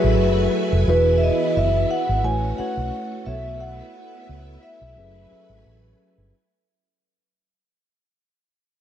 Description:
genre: soul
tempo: 88 BPM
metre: 4/4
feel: swing 54% on 16ths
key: unclear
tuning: A4 = 440 Hz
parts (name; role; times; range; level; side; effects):
- mellow tine electric piano; accompaniment; 0.0-6.4 s; E3 to E5; -23 LUFS; left 1 dB; wide subtle chorus
- string machine, violins; sustained chords; 0.0-6.3 s; E3 to G#5; -29 LUFS; right 2 dB; ensemble chorus
- vintage muted fingered electric bass; bass; 0.0-6.3 s; E1 to C#2; -22 LUFS; equal; none
- vibraphone with soft mallets; melody; 0.9-6.0 s; B4 to G#5; -24 LUFS; right 1 dB; tape echo
room: light reverb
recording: none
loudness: -18 LUFS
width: side -10 dB against mid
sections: 0.0-6.3 A section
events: fade-out 0.0-6.3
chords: 0.0 F#m11; 0.9 E; 2.2 A6; 3.3 B7sus4; 5.0 F#m11

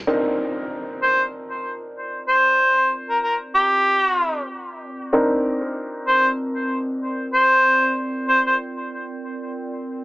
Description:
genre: glitch hop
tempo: 95 BPM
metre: 4/4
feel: swing 57% on 16ths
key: C minor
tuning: A4 = 441 Hz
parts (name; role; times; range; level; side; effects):
- dark baby grand piano; stabs; 0.1-10.0 s; C4 to Bb4; -23 LUFS; equal; dub echo
- impact; sound effects; 0.1-2.6 s; none; -35 LUFS; equal; none
- warbly tape-like pad; texture; 1.3-10.0 s; C4 to D5; -30 LUFS; equal; chorus, built-in reverb
- warm harmonica; melody; 1.0-8.6 s; G4 to C5; -18 LUFS; equal; dub echo
room: moderate small room reverb, RT60 0.5 s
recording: telephone sound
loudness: -17 LUFS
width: side -22 dB against mid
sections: 0.1-10.0 A section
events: impact 0.1-2.6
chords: 0.1 Cm9

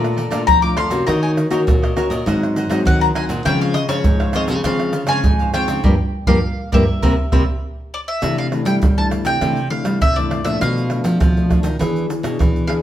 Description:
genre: samba and choro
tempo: 101 BPM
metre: 4/4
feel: straight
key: C major from 8.2 s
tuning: A4 = 441 Hz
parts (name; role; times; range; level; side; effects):
- cavaquinho; accompaniment; 0.0-7.4 s; Eb4 to Bb5; -27 LUFS; right 1 dB; none
- nylon-string guitar; accompaniment; 0.0-12.8 s; F2 to G#4; -22 LUFS; left 3 dB; none
- nylon-string guitar; bass; 0.0-12.8 s; G2 to G3; -21 LUFS; equal; none
- tube shaker, pandeiro, tamborim and surdo; percussion; 0.0-12.8 s; none; -20 LUFS; right 1 dB; none
- bowl-back mandolin; melody; 0.5-12.7 s; Db5 to D6; -22 LUFS; left 2 dB; none
room: wet stone room reverb, RT60 1.0 s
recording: band playing live in one room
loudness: -15 LUFS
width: side -12 dB against mid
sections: 0.0-8.2 A section; 8.2-12.8 B section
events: band accent 5.8-8.2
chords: 0.0 Bbmaj7; 1.1 Ebm7; 2.3 Ab7; 3.5 Dbmaj7; 5.8 Gm7; 7.0 C7; 8.2 C69; 10.6 Bm7b5; 11.8 E7

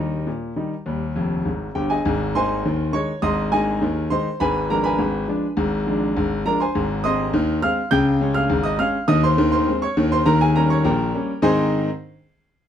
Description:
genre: ragtime piano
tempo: 102 BPM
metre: 2/4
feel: straight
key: Ab major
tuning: A4 = 439 Hz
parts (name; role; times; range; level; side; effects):
- clear grand piano; solo; 0.0-11.9 s; F1 to G6; -18 LUFS; equal; none
room: moderate studio reverb, RT60 0.6 s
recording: dark, warm production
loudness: -18 LUFS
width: side -9 dB against mid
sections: 0.0-2.0 A section; 2.0-11.4 B section; 11.4-12.6 C section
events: grand piano fill 1.2-2.0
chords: 0.0 Eb; 2.0 Ab; 4.4 Abdim7; 6.7 Ab; 7.9 Db; 9.1 Ab/Eb; 10.3 Eb7; 11.4 Ab

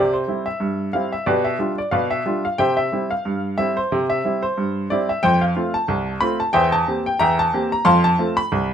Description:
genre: ragtime piano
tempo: 91 BPM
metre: 2/4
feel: swing 58% on 16ths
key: C major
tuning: A4 = 440 Hz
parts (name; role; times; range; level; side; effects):
- clear baby grand piano; solo; 0.0-8.7 s; C2 to C6; -18 LUFS; equal; none
room: light reverb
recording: minimal, uncompressed stereo recording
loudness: -18 LUFS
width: side -8 dB against mid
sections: 0.0-8.7 A section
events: none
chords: 0.0 C; 1.3 G7/B; 2.6 C; 5.2 F; 6.5 C7/E; 7.9 F

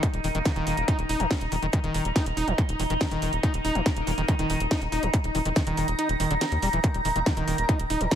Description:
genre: psychedelic trance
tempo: 141 BPM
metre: 4/4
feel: straight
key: unclear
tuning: A4 = 442 Hz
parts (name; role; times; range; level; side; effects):
- overtone-sweeping drone; sustained chords; 0.0-8.2 s; Eb4; -32 LUFS; left 1 dB; chorus, built-in reverb, phaser, sidechain pumping
- overdriven acid bass; riff; 0.0-8.2 s; D3 to Eb4; -30 LUFS; moving between left 5 dB and right 3 dB; distortion, auto-pan, sidechain pumping, ping-pong delay
- electronic kick drum; drums; 0.0-8.2 s; none; -25 LUFS; equal; distortion, overdrive
- techno drum kit; drums; 0.0-8.2 s; hi-hat, snare drum; -32 LUFS; right 1 dB; overdrive
- granular cloud pad; texture; 0.0-8.2 s; Bb5; -32 LUFS; equal; built-in reverb, sidechain pumping
- tight sequencer bass; bass; 0.1-8.1 s; Eb1 to Eb2; -29 LUFS; equal; none
- metallic wobble bass; second line; 0.3-8.2 s; G3 to Eb4; -40 LUFS; left 6 dB; none
room: little or no reverb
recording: none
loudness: -23 LUFS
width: side -10 dB against mid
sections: 0.0-8.2 A section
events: kick drops out 6.0-6.8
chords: 0.0 Eb5

